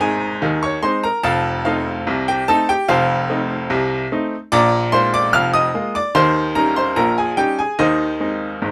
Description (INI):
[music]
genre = ragtime piano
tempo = 73 BPM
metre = 2/4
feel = straight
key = Ab major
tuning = A4 = 439 Hz
[part]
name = bright upright piano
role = solo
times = 0.0-8.7 s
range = F1 to F6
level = -18 LUFS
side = equal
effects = none
[sound]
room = light reverb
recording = none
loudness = -18 LUFS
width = mono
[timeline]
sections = 0.0-8.7 A section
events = none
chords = 0.0 Ab; 1.2 F7; 4.5 Bb7; 6.2 Eb7; 7.8 Ab/Eb